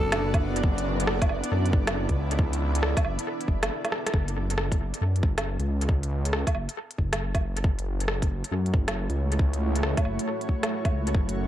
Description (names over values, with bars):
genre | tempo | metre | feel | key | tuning
future garage | 137 BPM | 4/4 | swing 65% on 16ths | F# minor | A4 = 441 Hz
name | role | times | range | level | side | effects
granular cloud pad | sustained chords | 0.0-4.1, 8.6-11.5 s | A3 to D5 | -32 LUFS | right 1 dB | built-in reverb, sidechain pumping
swelling detuned saw bass | bass | 0.0-11.5 s | F#1 to F#2 | -27 LUFS | equal | sidechain pumping
organic electronic drum kit | drums | 0.1-11.3 s | hi-hat, rim click, woodblock | -30 LUFS | right 1 dB | dub echo
electronic kick drum | drums | 0.3-11.3 s | none | -24 LUFS | equal | none
room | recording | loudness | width
light reverb | echo-heavy mix | -24 LUFS | side -12 dB against mid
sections
0.0-4.1 A section; 4.1-11.5 B section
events
drum fill 3.8-4.1; band accent 4.0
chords
0.0 Bm/F#; 4.1 F#m7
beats
0.20 | 0.63 1.07 1.51 1.95 | 2.39 2.82 3.26 3.70 | 4.14 4.58 5.01 5.45 | 5.89 6.33 6.77 7.20 | 7.64 8.08 8.52 8.96 | 9.39 9.83 10.27 10.71 | 11.14